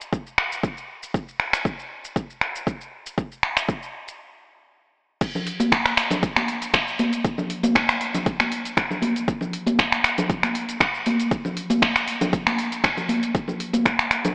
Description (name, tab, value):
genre	house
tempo	118 BPM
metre	4/4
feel	swing 54% on 16ths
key	none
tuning	none
part	deep house drum kit	drums	0.0-14.3 s	crash cymbal, finger snaps, hi-hat, shaker	-22 LUFS	equal	overdrive
part	electronic kick drum	drums	0.1-14.0 s	none	-24 LUFS	equal	overdrive
part	congas	percussion	5.4-14.3 s	none	-24 LUFS	equal	none
room	wet plate reverb, RT60 2.5 s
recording	dreamy mix soaked in reverb, AM radio sound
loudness	-20 LUFS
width	side -25 dB against mid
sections	0.0-5.2 A section; 5.2-14.3 B section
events	stop 4.2-5.2; drop 5.2-14.3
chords	none